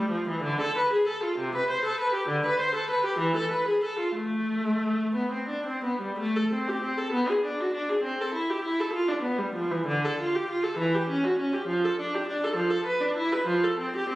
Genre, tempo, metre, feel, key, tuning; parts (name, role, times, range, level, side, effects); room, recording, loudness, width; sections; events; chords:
classical, baroque-style suite movement for unaccompanied viola; 56-69 BPM (dotted quarters); 6/8; rubato; A minor; A4 = 440 Hz
warm viola; solo; 0.0-14.2 s; C3 to C5; -25 LUFS; equal
wet recital hall reverb, RT60 1.3 s; recorded on a phone in the room, studio reverb, nothing above 10.8 kHz; -25 LUFS; side -17 dB against mid
0.0-6.2 A section; 6.2-14.2 B section